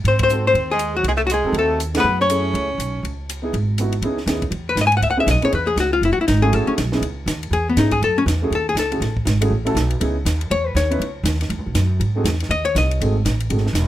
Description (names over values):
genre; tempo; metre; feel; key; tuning
jazz, small-group swing and bop; 241 BPM; 4/4; swing 59% on 8ths; C# minor; A4 = 440 Hz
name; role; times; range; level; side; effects
upright bass; bass; 0.0-13.9 s; E1 to G#2; -21 LUFS; right 1 dB; none
archtop guitar, miked and amplified; melody; 0.1-13.1 s; B3 to G#5; -19 LUFS; left 3 dB; plate reverb
clear tenor saxophone; second line; 0.1-3.2 s; F#3 to C#4; -24 LUFS; right 3 dB; none
compact cocktail drum kit; drums; 0.1-13.8 s; hi-hat, kick drum, ride cymbal, snare drum; -27 LUFS; equal; none
dark concert grand piano; accompaniment; 0.3-13.6 s; A3 to B4; -23 LUFS; right 2 dB; none
room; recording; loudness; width
light reverb; close, detailed microphones; -17 LUFS; side -13 dB against mid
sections
0.0-4.0 A section; 4.0-13.9 B section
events
band accent 0.2, 1.9; hollow-body jazz guitar solo 4.0-13.9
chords
0.1 G#7b9; 2.0 F#m9; 3.0 C#m7; 6.0 F#m9; 7.0 C#m7; 8.0 F#m9; 10.0 C#m7; 12.0 G#7b9